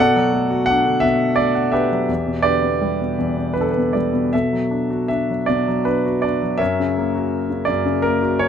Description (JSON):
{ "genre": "classical, lyrical solo piano", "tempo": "78-85 BPM", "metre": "3/4", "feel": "rubato", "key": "B minor", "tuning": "A4 = 442 Hz", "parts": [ { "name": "warm concert grand piano", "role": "solo", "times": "0.0-8.5 s", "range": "E2 to F#5", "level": "-16 LUFS", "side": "equal", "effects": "none" } ], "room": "light reverb", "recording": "close, detailed microphones", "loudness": "-17 LUFS", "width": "side -8 dB against mid", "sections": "0.0-8.5 A section", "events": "none", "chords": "0.0 Bm7; 2.1 Em7; 4.3 Bm7; 6.6 F#" }